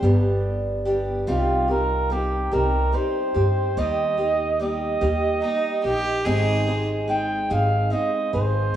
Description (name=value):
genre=acoustic folk duo or small band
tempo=48 BPM (dotted quarters)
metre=6/8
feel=straight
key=C minor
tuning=A4 = 440 Hz
part: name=bright fiddle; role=second line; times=0.0, 5.4-6.9 s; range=Eb4 to Ab4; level=-29 LUFS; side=right 1 dB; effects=diffuse ambient delay
part: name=picked acoustic archtop guitar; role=accompaniment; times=0.0-8.8 s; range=G2 to Ab4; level=-25 LUFS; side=equal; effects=none
part: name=upright bass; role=bass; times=0.0-8.7 s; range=G1 to G2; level=-24 LUFS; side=equal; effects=none
part: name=warm flugelhorn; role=melody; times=1.3-8.8 s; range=F4 to G5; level=-24 LUFS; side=right 2 dB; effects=none
room=wet plate reverb, RT60 2.5 s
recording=dreamy mix soaked in reverb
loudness=-20 LUFS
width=side -11 dB against mid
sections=0.0-1.3 A section; 1.3-8.8 B section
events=flugelhorn solo 1.3-8.8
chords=0.0 G; 1.3 Cm; 3.8 Eb; 6.3 Ab